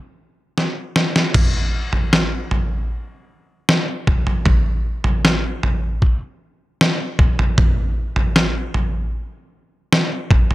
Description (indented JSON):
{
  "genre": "pop",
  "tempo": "77 BPM",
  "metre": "4/4",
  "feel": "straight",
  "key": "none",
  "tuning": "none",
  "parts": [
    { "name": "trip hop sampler-style drum kit", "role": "drums", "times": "0.6-10.5 s", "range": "crash cymbal, kick drum, snare drum, toms", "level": "-16 LUFS", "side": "equal", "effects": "none" }
  ],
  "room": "little or no reverb",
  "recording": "none",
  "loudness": "-17 LUFS",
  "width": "side -17 dB against mid",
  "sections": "0.0-1.3 A section; 1.3-10.5 B section",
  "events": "drum fill 0.6-1.3",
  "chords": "none"
}